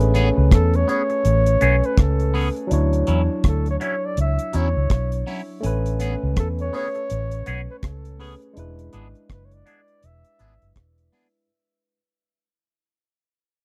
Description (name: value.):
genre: lovers rock reggae.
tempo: 82 BPM.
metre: 4/4.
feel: swing 60% on 16ths.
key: A major.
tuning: A4 = 440 Hz.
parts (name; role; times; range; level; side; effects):
barky tine electric piano; accompaniment; 0.0-11.5 s; F#3 to G#5; -29 LUFS; equal; overdrive, tape echo.
vintage muted fingered electric bass; bass; 0.0-11.1 s; E1 to E2; -23 LUFS; equal; none.
deep reggae drum kit; drums; 0.0-11.3 s; hi-hat, kick drum, rim click; -19 LUFS; equal; none.
twangy electric guitar; stabs; 0.1-11.3 s; F#3 to G#4; -28 LUFS; equal; phaser.
warm flugelhorn; melody; 0.5-10.8 s; A4 to E5; -27 LUFS; equal; tape echo.
room: small room ambience.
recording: dry, close 1970s-style studio recording.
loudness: -21 LUFS.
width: mono.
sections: 0.0-11.5 A section.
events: fade-out 0.0-11.5.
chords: 0.0 Amaj9; 2.7 Dmaj9; 5.6 Amaj9; 8.6 E7.